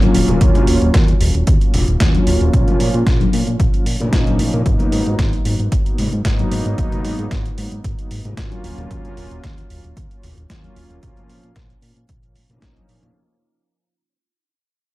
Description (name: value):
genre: nu-disco, nu disco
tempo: 113 BPM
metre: 4/4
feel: swing 53% on 16ths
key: G# dorian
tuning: A4 = 442 Hz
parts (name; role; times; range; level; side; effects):
- warm analog pad; accompaniment; 0.0-13.0 s; E#3 to G#4; -22 LUFS; equal; chorus, tape echo
- fat analog bass; bass; 0.0-13.1 s; D#1 to A#2; -20 LUFS; equal; tube saturation, sidechain pumping
- dusty soul sampler-style drum kit; drums; 0.0-13.1 s; hi-hat, snare drum; -26 LUFS; right 1 dB; overdrive, studio reverb
- congas; percussion; 0.0-13.1 s; none; -24 LUFS; left 4 dB; none
- electronic kick drum; drums; 0.4-12.7 s; none; -18 LUFS; equal; studio reverb
room: little or no reverb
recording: dark, warm production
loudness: -14 LUFS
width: side -18 dB against mid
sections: 0.0-13.2 A section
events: fade-out 0.0-13.2; filter sweep on analog synth bass 0.0-13.2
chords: 0.1 D#m7; 2.5 A#m; 4.7 G#m7; 8.6 D#m7; 11.0 A#m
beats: | 0.41 0.94 1.47 2.00 | 2.53 3.06 3.60 4.13 | 4.66 5.19 5.72 6.25 | 6.78 7.31 7.84 8.37 | 8.90 9.44 9.97 10.50 | 11.03 11.56 12.09 12.62